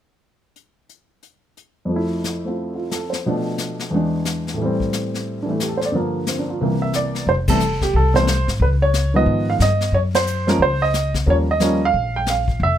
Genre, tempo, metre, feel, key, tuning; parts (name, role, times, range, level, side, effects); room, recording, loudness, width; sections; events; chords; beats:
jazz piano trio; 180 BPM; 4/4; swing 63% on 8ths; F major; A4 = 440 Hz
jazz brush drum kit; drums; 0.6-12.8 s; brushed snare drum, hi-hat, kick drum, ride cymbal, snare drum; -25 LUFS; left 3 dB
warm baby grand piano; melody; 1.9-12.8 s; C2 to G5; -19 LUFS; right 1 dB
upright bass; bass; 7.3-12.8 s; F1 to Ab2; -20 LUFS; left 1 dB
little or no reverb; close, detailed microphones; -17 LUFS; side -10 dB against mid
0.6-1.9 A section; 1.9-7.3 B section; 7.3-12.8 C section
band accent 7.4, 10.1
0.6 N.C.; 1.9 Fmaj7; 3.3 Bm7b5; 3.9 E7; 4.6 Am7; 5.9 Gm7; 6.6 C7; 7.3 Fadd9; 8.6 Db7; 9.9 Gb5; 11.3 Eb9
| 0.57 0.90 1.24 1.57 | 1.91 2.24 2.58 2.92 | 3.25 3.59 3.92 4.26 | 4.59 4.93 5.26 5.60 | 5.93 6.27 6.60 6.94 | 7.27 7.60 7.94 8.27 | 8.60 8.94 9.27 9.60 | 9.94 10.27 10.60 10.94 | 11.27 11.60 11.94 12.27 | 12.60